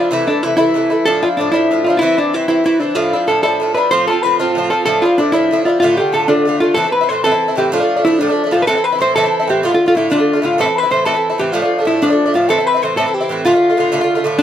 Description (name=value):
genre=celtic folk, Celtic jig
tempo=126 BPM (dotted quarters)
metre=6/8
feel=straight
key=D dorian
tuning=A4 = 440 Hz
part: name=hollow-body jazz guitar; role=melody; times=0.0-14.4 s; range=D4 to C5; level=-15 LUFS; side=equal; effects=none
part: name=baroque flute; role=second line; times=0.0-14.4 s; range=D5 to C6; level=-20 LUFS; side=left 5 dB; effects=none
part: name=Irish bouzouki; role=accompaniment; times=0.0-14.4 s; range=G2 to F4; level=-17 LUFS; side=right 2 dB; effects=none
room=light reverb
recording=none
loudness=-12 LUFS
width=side -10 dB against mid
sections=0.0-6.8 A section; 6.8-14.4 B section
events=none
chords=0.1 Am; 1.1 Dmadd9; 2.0 C; 3.0 Dmadd9; 3.9 F; 4.9 Dmadd9; 5.8 Dm; 6.8 Am; 7.7 Dm; 8.7 Am; 9.6 Dm; 10.6 Am; 11.5 Dm; 12.5 Am; 13.4 Dm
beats=| 0.11 0.59 | 1.06 1.54 | 2.02 2.49 | 2.96 3.44 | 3.92 4.39 | 4.87 5.34 | 5.82 6.29 | 6.77 7.25 | 7.72 8.20 | 8.68 9.15 | 9.63 10.10 | 10.58 11.06 | 11.53 12.01 | 12.49 12.96 | 13.44 13.92 | 14.39